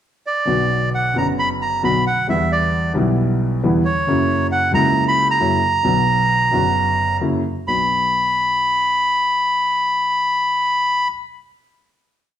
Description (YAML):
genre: tango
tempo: 133 BPM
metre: 4/4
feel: rubato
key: B harmonic minor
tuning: A4 = 440 Hz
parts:
  - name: bandoneon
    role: melody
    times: 0.3-11.1 s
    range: C#5 to B5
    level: -17 LUFS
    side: right 1 dB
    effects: none
  - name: dark grand piano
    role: accompaniment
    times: 0.5-11.1 s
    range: F#1 to F#4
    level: -19 LUFS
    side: left 1 dB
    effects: none
room: wet large studio reverb, RT60 1.1 s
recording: band playing live in one room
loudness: -15 LUFS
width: side -10 dB against mid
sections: 0.0-0.5 pickup bar; 0.5-7.7 A section; 7.7-11.3 final chord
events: none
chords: 0.5 Bm; 2.3 Em7; 4.1 F#7; 5.8 Bm; 7.2 F#7; 7.7 Bm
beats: 0.02 | 0.47 0.93 1.38 1.83 | 2.28 2.73 3.17 3.62 | 4.07 4.51 4.95 5.40 | 5.84 6.29 6.75 7.20 | 7.66 8.12 8.57 9.02 | 9.47 9.91 10.37 10.82